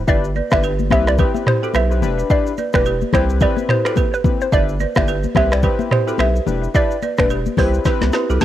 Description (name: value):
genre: afrobeats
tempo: 108 BPM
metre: 4/4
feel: swing 58% on 16ths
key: unclear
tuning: A4 = 440 Hz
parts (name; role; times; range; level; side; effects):
- warm analog keys; accompaniment; 0.0-8.4 s; C4 to B4; -24 LUFS; left 8 dB; chorus
- saturated sub bass; bass; 0.0-8.4 s; E1 to C3; -20 LUFS; right 1 dB; none
- hollow square pluck; melody; 0.1-8.3 s; B4 to E5; -22 LUFS; equal; chorus, cassette tape, analog delay
- balafon; riff; 0.1-8.4 s; E4 to E5; -24 LUFS; right 9 dB; none
- afro-pop drum kit; drums; 0.1-8.4 s; finger snaps, hi-hat, kick drum, rim click, shaker, snare drum, toms; -19 LUFS; right 1 dB; none
- congas; percussion; 0.4-8.4 s; none; -25 LUFS; left 8 dB; none
room: digital ambience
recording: home recording on cassette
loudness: -15 LUFS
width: side -12 dB against mid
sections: 0.0-8.4 A section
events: drum fill 7.9-8.4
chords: 0.1 G6; 0.9 Cmaj7; 2.0 Em7; 3.1 Cmaj7; 4.5 G6; 5.4 Cmaj7; 6.5 Em7; 7.6 Cmaj7